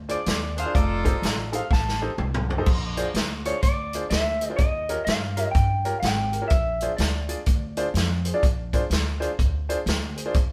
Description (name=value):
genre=electric blues shuffle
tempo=125 BPM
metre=4/4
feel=swing 63% on 8ths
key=unclear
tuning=A4 = 440 Hz
part: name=upright bass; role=bass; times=0.0-10.5 s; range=F1 to G2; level=-30 LUFS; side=equal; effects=none
part: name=electric guitar through a small old amp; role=melody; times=0.1-8.8 s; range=Db5 to A5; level=-31 LUFS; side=equal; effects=none
part: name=clear upright piano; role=accompaniment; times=0.1-10.3 s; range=Db4 to D5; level=-32 LUFS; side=equal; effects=none
part: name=swinging big-band drum kit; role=drums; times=0.1-10.5 s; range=crash cymbal, hi-hat, kick drum, snare drum, toms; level=-27 LUFS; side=equal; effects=none
part: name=clear horn section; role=stabs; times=0.6-1.6 s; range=D4 to C5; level=-33 LUFS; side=equal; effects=none
room=light reverb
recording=band playing live in one room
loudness=-24 LUFS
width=mono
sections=0.0-2.7 A section; 2.7-10.5 B section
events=clean electric guitar solo 0.0-2.7; drum fill 1.7-2.7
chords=0.0 Bb7 (rootless); 0.7 F7; 2.7 Bb7; 4.6 Eb7; 6.5 Bb7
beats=0.27 | 0.75 1.23 1.71 2.19 | 2.67 3.15 3.62 4.11 | 4.58 5.06 5.54 6.02 | 6.50 6.98 7.46 7.94 | 8.42 8.90 9.38 9.86 | 10.33